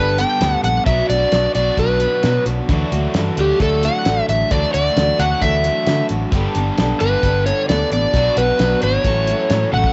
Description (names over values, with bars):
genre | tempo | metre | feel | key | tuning
folk rock and heartland rock | 132 BPM | 4/4 | straight | D major | A4 = 439 Hz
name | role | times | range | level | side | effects
overdriven slide guitar | melody | 0.0-9.9 s | G4 to G5 | -20 LUFS | equal | cassette tape
picked steel-string acoustic guitar | accompaniment | 0.0-9.9 s | A2 to A4 | -27 LUFS | equal | cassette tape
crunchy overdriven guitar | riff | 0.0-9.9 s | G2 to A4 | -26 LUFS | equal | cassette tape
fingered electric bass | bass | 0.0-9.9 s | G1 to D3 | -23 LUFS | equal | none
cloth-damped thuddy drum kit | drums | 0.2-9.9 s | hi-hat, kick drum, snare drum, toms | -24 LUFS | equal | none
room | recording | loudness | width
light reverb, small room ambience | home recording on cassette, nothing above 7.9 kHz | -17 LUFS | mono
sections
0.0-9.9 A section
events
drum fill 9.7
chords
0.0 Gadd9; 0.9 Bm; 2.7 Dadd9; 6.3 Gadd9; 8.1 Bm; 9.1 A6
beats
0.41 | 0.87 1.33 1.78 2.24 | 2.69 3.15 3.60 4.06 | 4.51 4.97 5.42 5.88 | 6.33 6.78 7.24 7.69 | 8.14 8.60 9.05 9.50